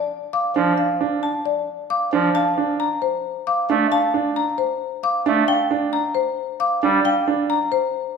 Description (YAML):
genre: classical, minimalist pattern music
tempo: 268 BPM (eighths)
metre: 7/8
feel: straight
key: Bb major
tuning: A4 = 439 Hz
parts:
  - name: marimba with medium mallets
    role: melody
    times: 0.0-8.0 s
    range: C5 to F5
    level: -24 LUFS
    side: left 3 dB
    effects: none
  - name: xylophone with plastic mallets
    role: arpeggios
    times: 0.3-7.8 s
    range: G5 to D6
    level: -25 LUFS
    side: left 4 dB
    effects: none
  - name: pipe organ, soft reed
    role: accompaniment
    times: 0.6-7.0 s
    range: F3 to A3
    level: -24 LUFS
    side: right 2 dB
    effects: none
  - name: bright grand piano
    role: arpeggios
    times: 0.6-7.6 s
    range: D4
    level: -22 LUFS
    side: right 5 dB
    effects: none
room: wet recital hall reverb, RT60 1.6 s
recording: minimal, uncompressed stereo recording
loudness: -18 LUFS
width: side -5 dB against mid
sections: 0.0-8.2 A section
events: none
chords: 0.0 F; 2.4 Bbmaj7; 5.5 C7sus4